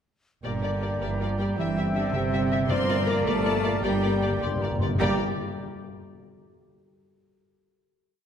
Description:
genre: cinematic, heroic adventure film score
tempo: 106 BPM (dotted quarters)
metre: 6/8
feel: straight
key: G dorian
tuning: A4 = 440 Hz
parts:
  - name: warm symphonic violin section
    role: melody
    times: 0.4-5.2 s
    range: D5 to E5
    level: -36 LUFS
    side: left 5 dB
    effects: none
  - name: bright oboe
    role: second line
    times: 0.4-5.2 s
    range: F5 to G5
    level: -40 LUFS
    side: right 1 dB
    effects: none
  - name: silver concert flute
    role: second line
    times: 0.4-5.2 s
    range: G5 to C6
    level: -39 LUFS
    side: left 1 dB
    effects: none
  - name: rich symphonic viola section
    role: accompaniment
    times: 0.4-5.2 s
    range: G3 to Bb4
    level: -35 LUFS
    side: right 1 dB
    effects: none
  - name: warm French horn section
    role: sustained chords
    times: 0.4-5.2 s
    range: Bb3 to C5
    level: -32 LUFS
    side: left 3 dB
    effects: none
  - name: dark trumpet section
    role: stabs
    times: 0.4-5.2 s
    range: D5 to E5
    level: -34 LUFS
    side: left 1 dB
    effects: none
  - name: rich symphonic cello section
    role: bass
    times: 0.4-5.2 s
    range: Bb2 to C4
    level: -32 LUFS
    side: right 2 dB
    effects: none
  - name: clear clarinet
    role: second line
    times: 0.5-5.2 s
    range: D5 to E5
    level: -39 LUFS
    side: left 1 dB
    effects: none
  - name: rich symphonic violin section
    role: second line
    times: 0.5-5.2 s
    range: Bb4 to C6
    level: -38 LUFS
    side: left 3 dB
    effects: none
  - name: clear trombone section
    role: sustained chords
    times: 0.5-5.2 s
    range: Bb2 to C4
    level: -35 LUFS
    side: right 4 dB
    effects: none
  - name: rich symphonic double bass section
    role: bass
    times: 0.5-5.2 s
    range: G1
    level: -29 LUFS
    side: right 1 dB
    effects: none
  - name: timpani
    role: percussion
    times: 2.7-5.2 s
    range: G2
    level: -31 LUFS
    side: left 2 dB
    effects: none
room: wet concert hall reverb, RT60 1.9 s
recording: none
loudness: -23 LUFS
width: side -8 dB against mid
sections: 0.4-5.0 theme; 5.0-6.1 final chord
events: timpani fill 3.8-5.0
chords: 0.4 Gm; 1.6 C/G; 2.7 Bbadd9/G; 3.8 Gm

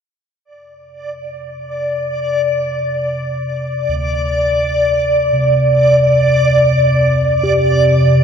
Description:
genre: dark ambient drone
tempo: free time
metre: none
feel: none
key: unclear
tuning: A4 = 440 Hz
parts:
  - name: deep rumbling drone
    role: drone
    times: 1.6-8.2 s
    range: F2 to C3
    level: -18 LUFS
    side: equal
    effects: built-in reverb, lush chorus
  - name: backwards swelling texture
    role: texture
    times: 1.1-8.2 s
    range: D5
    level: -14 LUFS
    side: equal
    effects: built-in reverb
  - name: gamelan-type bossed gongs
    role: arpeggios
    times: 3.9-8.2 s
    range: D2 to G4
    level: -20 LUFS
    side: left 2 dB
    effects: tape echo
room: wet cathedral reverb, RT60 5.6 s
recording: none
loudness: -12 LUFS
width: side -7 dB against mid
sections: 0.5-8.2 A section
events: fade-in on synth drone 0.5-8.2; fade-in on kettle gongs 0.5-8.2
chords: 0.5 G7sus4/F (rootless)

